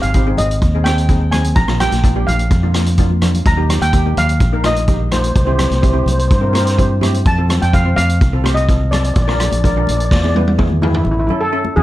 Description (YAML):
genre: calypso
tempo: 126 BPM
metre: 4/4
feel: straight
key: Eb major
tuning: A4 = 438 Hz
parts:
  - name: steel pan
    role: melody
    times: 0.0-11.8 s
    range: E4 to Bb5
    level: -20 LUFS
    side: equal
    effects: tape echo
  - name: steel pan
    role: accompaniment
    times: 0.0-11.8 s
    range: Bb3 to C5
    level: -22 LUFS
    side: equal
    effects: none
  - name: fingered electric bass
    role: bass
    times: 0.0-11.8 s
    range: Ab1 to G2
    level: -16 LUFS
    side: equal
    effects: none
  - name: street-band drum kit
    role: drums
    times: 0.0-11.1 s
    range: hi-hat, kick drum, rim click, snare drum, toms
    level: -17 LUFS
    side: equal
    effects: none
  - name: congas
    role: percussion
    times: 0.4-11.8 s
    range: none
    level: -25 LUFS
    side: left 2 dB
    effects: none
room: light reverb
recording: dark, warm production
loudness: -12 LUFS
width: side -15 dB against mid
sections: 0.0-11.1 A section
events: drum fill 2.9-3.5, 10.1-11.1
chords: 0.0 Ab; 1.6 Bb; 3.5 Eb; 5.4 C; 7.3 F; 9.2 Bb; 10.1 E; 11.1 A